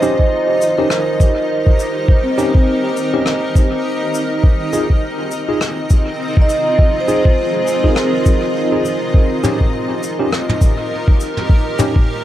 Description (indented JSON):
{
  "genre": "ambient dub",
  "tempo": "102 BPM",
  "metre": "4/4",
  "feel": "swing 58% on 16ths",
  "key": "unclear",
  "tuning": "A4 = 440 Hz",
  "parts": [
    { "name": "granular cloud pad", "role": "sustained chords", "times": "0.0-12.2 s", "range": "C4 to Eb5", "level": "-20 LUFS", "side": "left 1 dB", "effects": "built-in reverb" },
    { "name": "vibraphone with medium mallets", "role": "arpeggios", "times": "0.0-12.2 s", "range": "C4 to Eb5", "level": "-19 LUFS", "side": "right 2 dB", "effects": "dub echo" },
    { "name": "tine electric piano", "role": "stabs", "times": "0.0-11.9 s", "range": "Db4 to Ab4", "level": "-22 LUFS", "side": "left 1 dB", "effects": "overdrive, fast stereo tremolo, dub echo" },
    { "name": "vintage brush drum kit", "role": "drums", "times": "0.0-11.9 s", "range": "cabasa, rim click, toms", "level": "-23 LUFS", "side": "equal", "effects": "dub echo" },
    { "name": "electronic kick drum", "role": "drums", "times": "0.2-12.1 s", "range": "none", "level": "-12 LUFS", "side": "equal", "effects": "overdrive" }
  ],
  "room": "moderate spring reverb, RT60 2.2 s",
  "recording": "none",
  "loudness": "-13 LUFS",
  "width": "side -12 dB against mid",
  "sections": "0.0-12.2 A section",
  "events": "none",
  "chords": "0.0 Eb; 4.4 Fm7; 9.1 Eb",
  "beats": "0.32 0.91 1.50 | 2.08 2.67 3.26 3.85 | 4.44 5.02 5.61 6.20 | 6.79 7.38 7.97 8.55 | 9.14 9.73 10.32 10.91 | 11.49 12.08"
}